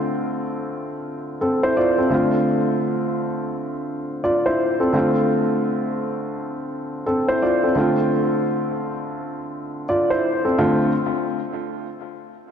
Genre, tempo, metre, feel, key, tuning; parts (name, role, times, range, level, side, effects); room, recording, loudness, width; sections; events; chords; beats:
hip hop; 85 BPM; 4/4; swing 62% on 16ths; D minor; A4 = 438 Hz
dark grand piano; solo; 0.0-10.9 s; D3 to D5; -19 LUFS; equal; ping-pong delay
wet lush hall reverb, RT60 2.6 s; dreamy mix soaked in reverb; -19 LUFS; side -8 dB against mid
0.0-10.6 A section; 10.6-12.5 B section
0.0 Dm7
0.00 0.70 1.41 | 2.12 2.82 3.53 4.24 | 4.94 5.65 6.35 7.06 | 7.76 8.47 9.18 9.88 | 10.59